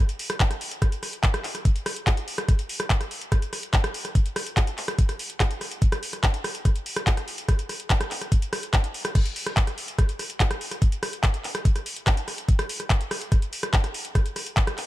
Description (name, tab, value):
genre	trance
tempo	144 BPM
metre	4/4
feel	straight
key	none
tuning	none
part	techno drum kit	drums	0.1-14.9 s	crash cymbal, handclaps, hi-hat, rim click	-28 LUFS	equal	none
part	electronic kick drum	drums	0.4-14.7 s	none	-21 LUFS	equal	none
room	little or no reverb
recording	none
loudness	-22 LUFS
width	side -16 dB against mid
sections	0.0-14.9 A section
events	none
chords	none